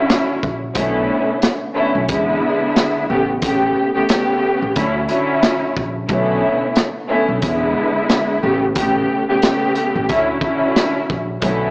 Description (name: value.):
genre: hip hop, boom-bap hip-hop.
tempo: 90 BPM.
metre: 4/4.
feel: swing 57% on 16ths.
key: unclear.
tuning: A4 = 440 Hz.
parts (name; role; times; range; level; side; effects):
warm studio string section; accompaniment; 0.0-11.7 s; C#3 to G4; -16 LUFS; equal; high-pass filter, low-pass filter.
raw garage drum kit; drums; 0.1-11.6 s; hi-hat, kick drum, rim click, snare drum; -19 LUFS; equal; none.
upright bass; bass; 0.4-11.7 s; A1 to E2; -24 LUFS; equal; transformer saturation.
room: light reverb, studio reverb.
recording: worn, warbling old tape, cassette tape, warbly pitch drift, small speaker sound.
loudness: -15 LUFS.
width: side -30 dB against mid.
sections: 0.0-11.7 A section.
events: none.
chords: 0.0 Dmaj9; 0.8 Bm11; 2.1 E7; 3.1 A9; 4.8 Dmaj9; 6.1 Bm11; 7.4 E7; 8.4 A9; 10.1 Dmaj9.